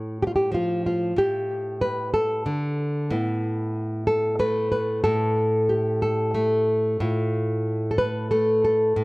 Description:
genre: folk, solo fingerstyle acoustic guitar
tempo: 92 BPM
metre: 3/4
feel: straight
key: unclear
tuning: A4 = 440 Hz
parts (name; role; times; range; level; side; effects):
- nylon-string guitar; solo; 0.0-9.0 s; A2 to B4; -21 LUFS; equal; none
room: moderate spring reverb, RT60 1.4 s, small room reverb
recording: dark, warm production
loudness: -21 LUFS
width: side -23 dB against mid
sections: 0.0-9.0 A section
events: none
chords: 0.0 F/A; 1.2 Gsus2/A; 3.1 Asus2; 7.0 Fmaj7/A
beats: 0.52 | 1.17 1.82 2.47 | 3.11 3.76 4.40 | 5.05 5.70 6.35 | 7.01 7.66 8.31 | 8.96

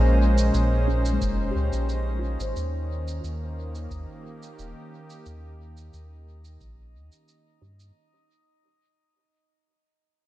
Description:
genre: ambient dub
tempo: 89 BPM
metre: 4/4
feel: straight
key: unclear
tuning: A4 = 441 Hz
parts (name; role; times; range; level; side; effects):
- warm analog pad; sustained chords; 0.0-8.0 s; Bb2 to C5; -29 LUFS; equal; chorus
- soft dub sub bass; bass; 0.0-7.9 s; Eb1 to G2; -25 LUFS; equal; none
- drifting glass-harmonics texture; texture; 0.0-8.0 s; Eb4 to Eb5; -40 LUFS; right 1 dB; chorus, built-in reverb
- shaker; drums; 0.4-7.9 s; none; -42 LUFS; right 4 dB; overdrive, dub echo
- filtered dub chord stab; stabs; 0.9-7.8 s; Db4 to Db5; -38 LUFS; right 5 dB; none
- handpan; arpeggios; 1.1-5.3 s; Ab3 to C5; -36 LUFS; left 6 dB; vintage 12-bit sampler grit, low-pass filter, analog delay
- electronic kick drum; drums; 1.2-6.7 s; none; -35 LUFS; equal; none
room: light reverb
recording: none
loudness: -23 LUFS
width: side -15 dB against mid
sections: 0.0-8.0 A section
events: fade-out 0.0-8.0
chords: 0.0 Bbm9; 2.6 Eb7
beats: 0.54 1.21 1.89 | 2.56 3.24 3.91 4.58 | 5.26 5.93 6.61 7.28

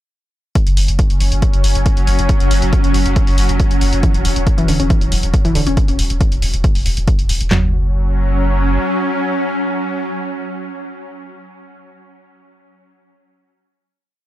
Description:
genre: driving peak-time techno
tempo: 138 BPM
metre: 4/4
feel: straight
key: unclear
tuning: A4 = 441 Hz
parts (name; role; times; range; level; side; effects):
- swarming drone; drone; 1.2-10.6 s; F#3 to C#4; -21 LUFS; equal; built-in reverb, sidechain pumping
- electronic hi-hat; drums; 0.6-7.5 s; none; -24 LUFS; left 1 dB; none
- punchy analog drum machine; drums; 0.6-7.6 s; handclaps, kick drum, snare drum, toms; -15 LUFS; equal; none
- saturated sub bass; bass; 0.7-8.8 s; E1 to F#1; -17 LUFS; equal; overdrive, sidechain pumping, low-pass filter
- warbly dusty pluck; riff; 4.0-7.7 s; D3 to C#4; -20 LUFS; equal; chorus, sidechain pumping, tape echo
room: little or no reverb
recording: dry, gritty hardware recording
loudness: -13 LUFS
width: side -14 dB against mid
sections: 0.6-7.5 groove; 7.5-11.0 final chord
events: none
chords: 0.6 F#5; 4.0 Dmaj9/E (rootless); 7.5 F#5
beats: | 0.55 0.99 1.42 1.86 | 2.29 2.73 3.16 3.60 | 4.03 4.47 4.90 5.34 | 5.77 6.21 6.64 7.08 | 7.51 7.95 8.38 8.81 | 9.25 9.68 10.12 10.55

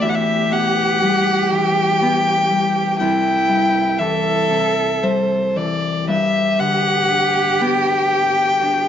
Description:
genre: celtic folk, Celtic slow air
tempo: 59 BPM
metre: 3/4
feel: rubato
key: unclear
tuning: A4 = 440 Hz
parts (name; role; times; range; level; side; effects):
- dark fiddle; melody; 0.0-8.9 s; C5 to G5; -18 LUFS; left 2 dB; none
- warm cello; second line; 0.0-8.9 s; E4 to A4; -21 LUFS; right 4 dB; none
- Celtic harp; accompaniment; 0.0-8.9 s; C2 to G4; -22 LUFS; left 3 dB; none
room: moderate recital hall reverb, RT60 1.6 s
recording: dark, warm production, nothing above 7.8 kHz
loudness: -15 LUFS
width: side -9 dB against mid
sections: 0.0-8.9 A section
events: none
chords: 0.0 Em; 3.0 C; 6.1 G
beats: | 0.02 1.01 2.01 | 3.00 3.99 5.03 | 6.08 7.11 8.13

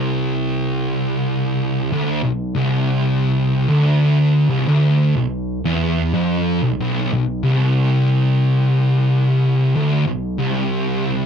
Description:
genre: metal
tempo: 61 BPM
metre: 4/4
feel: swing 63% on 8ths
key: B phrygian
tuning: A4 = 440 Hz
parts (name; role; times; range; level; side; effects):
- thick fuzz guitar; solo; 0.0-11.3 s; B1 to E#2; -16 LUFS; equal; distortion
room: moderate booth ambience, RT60 0.2 s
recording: dry, close 1970s-style studio recording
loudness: -16 LUFS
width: side -7 dB against mid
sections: 0.0-11.3 A section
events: none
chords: none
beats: 0.96 1.94 | 2.91 3.88 4.86 5.84 | 6.82 7.80 8.78 9.76 | 10.75

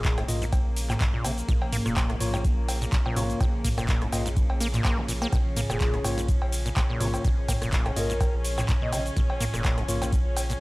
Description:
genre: acid house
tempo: 125 BPM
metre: 4/4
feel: swing 55% on 16ths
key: Bb minor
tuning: A4 = 440 Hz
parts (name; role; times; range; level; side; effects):
- breathy flute-like synth lead; melody; 0.0-0.2, 5.7-9.0 s; Ab4 to Eb5; -35 LUFS; equal; chorus, analog delay
- warm chamber string section; sustained chords; 0.0-10.6 s; Db3 to Db4; -35 LUFS; equal; sidechain pumping
- acid bass, saw; riff; 0.0-10.5 s; Ab2 to Bb3; -32 LUFS; equal; tube saturation, analog delay
- saturated sub bass; bass; 0.0-10.6 s; F1 to Bb1; -32 LUFS; equal; sidechain pumping
- booming analog drum machine; drums; 0.0-10.6 s; cowbell, handclaps, hi-hat, ride cymbal, rim click, shaker, toms; -30 LUFS; equal; none
- electronic kick drum; drums; 0.0-10.2 s; none; -26 LUFS; equal; none
- bright tine electric piano; stabs; 0.3-10.1 s; Bb3 to Eb5; -34 LUFS; left 2 dB; analog delay
room: little or no reverb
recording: dry, gritty hardware recording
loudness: -23 LUFS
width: side -22 dB against mid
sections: 0.0-10.6 A section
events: none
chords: 0.0 Bbm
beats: 0.04 0.53 1.00 | 1.49 1.97 2.44 2.92 | 3.40 3.88 4.37 4.84 | 5.33 5.80 6.29 6.76 | 7.25 7.72 8.21 8.69 | 9.16 9.64 10.12

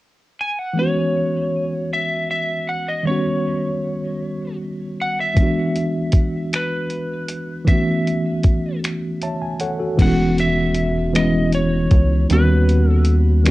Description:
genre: slow six-eight R&B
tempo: 52 BPM (dotted quarters)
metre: 6/8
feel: straight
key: E major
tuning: A4 = 439 Hz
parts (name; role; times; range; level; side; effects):
- lightly driven lead guitar; melody; 0.4-13.1 s; B4 to G#5; -24 LUFS; equal; cassette tape
- tine electric piano; accompaniment; 0.7-13.5 s; D#3 to A5; -20 LUFS; equal; overdrive, fast stereo tremolo, cassette tape
- dusty soul sampler-style drum kit; drums; 5.4-13.5 s; crash cymbal, finger snaps, hi-hat, kick drum; -17 LUFS; equal; cassette tape
- rubbery square bass; bass; 10.0-13.5 s; E1 to D#2; -17 LUFS; equal; none
room: moderate studio reverb, RT60 0.6 s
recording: home recording on cassette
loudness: -17 LUFS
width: side -18 dB against mid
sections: 0.8-10.0 A section; 10.0-13.5 B section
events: break 8.8-10.0; tine electric piano fill 8.8-10.0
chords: 0.0 N.C.; 0.8 E69; 3.1 D#7alt; 5.4 E7; 7.7 A6; 12.3 D#7alt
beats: | 0.76 1.91 | 3.06 4.22 | 5.37 6.52 | 7.68 8.83 | 9.98 11.14 | 12.29 13.45

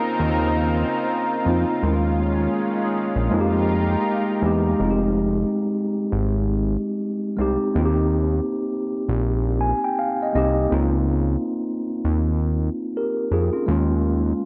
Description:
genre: lo-fi hip hop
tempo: 81 BPM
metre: 4/4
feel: swing 58% on 16ths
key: F minor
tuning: A4 = 440 Hz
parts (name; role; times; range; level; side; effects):
- mellow tine electric piano; accompaniment; 0.0-14.5 s; Ab3 to Ab5; -25 LUFS; equal; cassette tape, low-pass filter
- lush unison pad; sustained chords; 0.0-4.8 s; Db3 to Bb4; -28 LUFS; equal; chorus, tremolo, low-pass filter
- fat analog bass; bass; 0.2-14.3 s; F1 to F2; -24 LUFS; equal; none
room: moderate spring reverb, RT60 1.1 s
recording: none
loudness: -22 LUFS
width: mono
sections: 0.0-4.8 A section; 4.8-14.5 B section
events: none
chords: 0.0 Dbmaj13; 1.8 Eb9sus4; 3.3 Fm11; 4.8 Fm9; 7.8 Bb13sus4; 10.7 Dbmaj13; 13.7 Eb9sus4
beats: 0.35 1.09 | 1.83 2.57 3.31 4.05 | 4.79 5.53 6.27 7.01 | 7.75 8.50 9.24 9.98 | 10.72 11.46 12.20 12.94 | 13.68 14.42

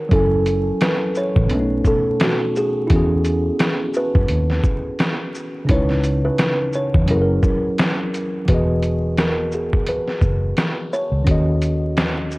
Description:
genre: lo-fi hip hop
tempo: 86 BPM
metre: 4/4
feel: swing 56% on 16ths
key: unclear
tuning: A4 = 440 Hz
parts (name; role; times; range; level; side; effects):
- kalimba; melody; 0.0-12.3 s; F#4 to C#5; -23 LUFS; equal; low-pass filter
- tine electric piano; accompaniment; 0.0-12.4 s; B2 to G#5; -23 LUFS; equal; medium stereo tremolo, cassette tape, low-pass filter
- vintage muted fingered electric bass; bass; 0.1-12.4 s; E1 to F#2; -20 LUFS; equal; none
- trip hop sampler-style drum kit; drums; 0.1-12.4 s; hi-hat, kick drum, shaker, snare drum; -20 LUFS; equal; vintage 12-bit sampler grit
room: light reverb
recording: worn, warbling old tape, cassette tape, vinyl crackle, warbly pitch drift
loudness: -16 LUFS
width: side -22 dB against mid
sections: 0.0-8.5 A section; 8.5-12.4 B section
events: none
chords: 0.1 F#m7; 1.5 B7; 2.9 E6; 5.7 C#m7; 7.1 F#7; 8.5 Emaj7; 11.3 D#m7b5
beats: | 0.11 0.81 1.50 2.20 | 2.90 3.60 4.29 4.99 | 5.69 6.39 7.08 7.78 | 8.48 9.18 9.88 10.57 | 11.27 11.97

